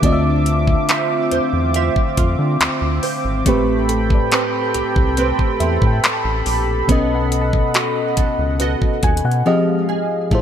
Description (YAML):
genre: contemporary R&B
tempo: 70 BPM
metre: 4/4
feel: straight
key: A minor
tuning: A4 = 440 Hz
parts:
  - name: mellow FM electric piano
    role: accompaniment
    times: 0.0-10.4 s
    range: A2 to G#5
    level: -21 LUFS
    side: left 2 dB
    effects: chorus
  - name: warm analog pad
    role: sustained chords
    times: 0.0-10.4 s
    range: F3 to D6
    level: -22 LUFS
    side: equal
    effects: chorus
  - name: nylon-string guitar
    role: arpeggios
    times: 0.0-10.4 s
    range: F3 to E5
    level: -24 LUFS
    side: right 8 dB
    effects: analog chorus, digital delay
  - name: round analog bass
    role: bass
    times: 0.0-10.4 s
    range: G#1 to D3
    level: -20 LUFS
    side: equal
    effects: none
  - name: smooth R&B drum kit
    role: drums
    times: 0.0-10.4 s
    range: handclaps, hi-hat, kick drum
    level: -19 LUFS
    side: equal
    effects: none
  - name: soft round pluck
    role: texture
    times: 0.0-9.8 s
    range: A4 to A5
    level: -33 LUFS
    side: equal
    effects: none
room: light reverb, digital ambience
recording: bright 1980s-style digital production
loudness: -15 LUFS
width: side -9 dB against mid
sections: 0.0-10.3 A section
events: FM electric piano fill 8.6-10.3; silent gap 9.5-10.3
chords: 0.0 Dm9; 3.5 Am9; 6.9 B7; 9.5 Fm7